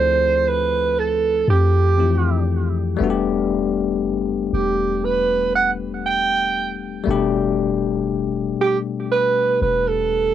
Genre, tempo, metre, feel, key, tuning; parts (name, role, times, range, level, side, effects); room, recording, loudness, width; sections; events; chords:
contemporary R&B; 59 BPM; 4/4; straight; E phrygian; A4 = 440 Hz
warm alto saxophone; melody; 0.0-10.3 s; G4 to G5; -18 LUFS; right 4 dB; cassette tape, analog delay
bell-like tine electric piano; accompaniment; 0.0-10.3 s; B2 to A4; -22 LUFS; left 8 dB; medium stereo tremolo
soft 808-style bass; bass; 0.0-10.3 s; E1 to F2; -24 LUFS; left 1 dB
light reverb; home recording on cassette; -17 LUFS; side -10 dB against mid
0.0-10.3 A section
0.0 Dm11; 3.0 Em11